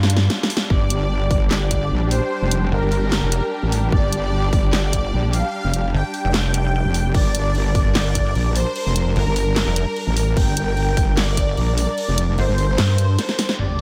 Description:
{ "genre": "heavy wobble dubstep", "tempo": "149 BPM", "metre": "4/4", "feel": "half-time", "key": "G minor", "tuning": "A4 = 438 Hz", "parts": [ { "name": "dark studio string section", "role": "sustained chords", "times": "0.0-13.8 s", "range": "Bb2 to Bb4", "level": "-31 LUFS", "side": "equal", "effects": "sidechain pumping, low-pass filter" }, { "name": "pulsing pluck wobble bass", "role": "bass", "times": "0.0-13.2 s", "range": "F1 to G2", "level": "-21 LUFS", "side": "equal", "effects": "chorus, overdrive" }, { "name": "dubstep drum kit", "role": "drums", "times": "0.0-13.8 s", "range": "crash cymbal, handclaps, hi-hat, snare drum", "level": "-27 LUFS", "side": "equal", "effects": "low-pass filter on hats, low-pass filter on snare, low-pass filter on cymbals, low-pass filter on room" }, { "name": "soft supersaw", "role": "melody", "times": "0.7-13.8 s", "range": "Bb4 to G5", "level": "-28 LUFS", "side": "equal", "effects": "dub echo" }, { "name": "wobble bass", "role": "bass", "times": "0.7-13.8 s", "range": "F1 to Bb1", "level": "-22 LUFS", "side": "equal", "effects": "chorus, overdrive" }, { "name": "electronic kick drum", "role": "drums", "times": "0.7-11.5 s", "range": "none", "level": "-23 LUFS", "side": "equal", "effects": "none" }, { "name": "sub drop", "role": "sound effects", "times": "13.6-13.8 s", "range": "none", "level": "-25 LUFS", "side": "equal", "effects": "none" } ], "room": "little or no reverb", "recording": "none", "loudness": "-20 LUFS", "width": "mono", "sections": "0.0-13.6 A section", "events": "drop 0.0-13.6; drum fill 0.0-0.7, 13.2-13.6; break 13.2-13.6; band accent 13.5; impact 13.6", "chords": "0.0 G5" }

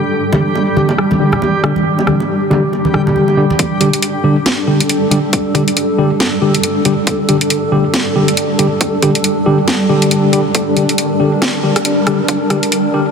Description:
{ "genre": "deep dubstep", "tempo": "138 BPM", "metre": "4/4", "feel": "swing 59% on 16ths, half-time", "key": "G minor", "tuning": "A4 = 440 Hz", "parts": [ { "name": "granular cloud pad", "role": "sustained chords", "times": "0.0-13.1 s", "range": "G3 to Bb4", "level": "-16 LUFS", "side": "right 1 dB", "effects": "built-in reverb" }, { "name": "backwards swelling texture", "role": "texture", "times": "0.0-3.6 s", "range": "G3 to G4", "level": "-21 LUFS", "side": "right 1 dB", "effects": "built-in reverb" }, { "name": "mellow tine electric piano", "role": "stabs", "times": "0.3-13.1 s", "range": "D3 to G4", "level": "-15 LUFS", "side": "left 1 dB", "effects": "medium stereo tremolo, low-pass filter, dub echo" }, { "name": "bongos and congas", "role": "percussion", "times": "0.3-3.6 s", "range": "none", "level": "-18 LUFS", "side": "right 2 dB", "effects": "dub echo" }, { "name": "garage drum kit", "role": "drums", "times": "1.0-12.8 s", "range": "hi-hat, rim click, snare drum", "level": "-18 LUFS", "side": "equal", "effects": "soft clipping on snare, low-pass filter on snare, small room ambience, low-pass filter on hats" }, { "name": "electronic kick drum", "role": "drums", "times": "3.6-12.6 s", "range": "none", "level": "-19 LUFS", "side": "right 1 dB", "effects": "high-pass filter on kick, small room ambience" } ], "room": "moderate huge ambient reverb, RT60 6.0 s", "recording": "dense, heavily limited modern master, high-pass filter", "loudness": "-11 LUFS", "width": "side -6 dB against mid", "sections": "0.0-3.6 A section; 3.6-13.1 B section", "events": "build-up 3.6-13.1", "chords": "0.0 G5" }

